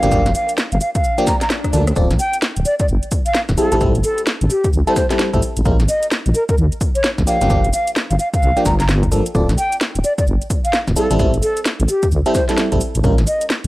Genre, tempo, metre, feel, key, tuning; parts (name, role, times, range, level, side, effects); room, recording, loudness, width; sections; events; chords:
UK garage, two-step garage; 130 BPM; 4/4; swing 62% on 16ths; D minor; A4 = 438 Hz
mellow hollow jazz flute; melody; 0.0-13.4 s; G4 to Bb5; -20 LUFS; equal; tape echo
FM electric piano; stabs; 0.0-13.2 s; F3 to D5; -20 LUFS; equal; chorus, phaser, tape echo
deep soft wobble bass; bass; 0.0-13.7 s; D1 to Eb2; -16 LUFS; equal; chorus
garage drum kit; drums; 0.0-13.7 s; hi-hat, rim click, shaker, snare drum; -22 LUFS; equal; studio ambience
electronic kick drum; drums; 0.1-13.2 s; -20 LUFS; equal; studio ambience
swell; sound effects; 1.2-2.0 s; -29 LUFS; left 2 dB
digital ambience; dry, gritty hardware recording; -14 LUFS; side -18 dB against mid
0.0-13.7 A section
swell 1.2-2.0; drum fill 1.5-2.0
0.0 Gm7; 2.0 D7(no3); 3.6 Am7; 5.7 Bb7(no3); 7.3 Gm7; 9.3 D7(no3); 11.0 Am7; 13.0 Bbm7